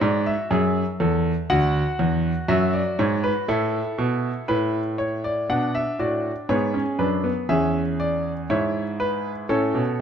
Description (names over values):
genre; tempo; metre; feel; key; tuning
classical, baroque-style 4-part fugue for grand piano; 60 BPM; 4/4; straight; unclear; A4 = 440 Hz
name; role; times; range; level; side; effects
clear concert grand piano; solo; 0.0-10.0 s; D2 to F#5; -20 LUFS; equal; none
room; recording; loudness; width
moderate recital hall reverb, RT60 1.6 s; close, detailed microphones; -21 LUFS; side -8 dB against mid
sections
0.0-5.5 A section; 5.5-10.0 B section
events
none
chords
0.0 F#m; 1.5 D; 3.5 A; 5.5 G#dim; 7.5 C#m/E; 9.5 F#m/A (rootless)